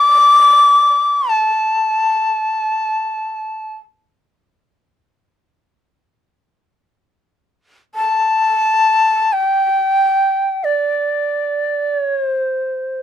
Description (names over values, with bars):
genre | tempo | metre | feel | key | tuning
japanese traditional | free time | none | none | unclear | A4 = 438 Hz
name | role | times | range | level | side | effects
breathy reedy shakuhachi | solo | 0.0-13.0 s | D5 to D6 | -13 LUFS | left 1 dB | none
room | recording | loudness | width
light reverb | none | -13 LUFS | side -11 dB against mid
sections
0.0-13.0 A section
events
none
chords
none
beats
free time